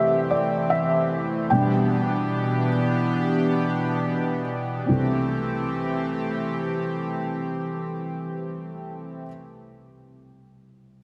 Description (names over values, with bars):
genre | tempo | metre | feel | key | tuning
pop | free time | none | none | C major | A4 = 440 Hz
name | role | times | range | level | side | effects
felt-muted upright piano | accompaniment | 0.0-11.0 s | C2 to G5 | -28 LUFS | equal | analog chorus
chorused pulse-width pad | sustained chords | 0.0-9.2 s | B2 to G4 | -27 LUFS | equal | none
room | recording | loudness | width
wet lush hall reverb, RT60 2.5 s | dreamy mix soaked in reverb | -24 LUFS | mono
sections
0.0-4.9 A section; 4.9-8.5 B section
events
slowing down 0.0-4.9; felt piano solo 0.0-4.9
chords
0.0 C6; 1.5 Em7/B; 4.9 C6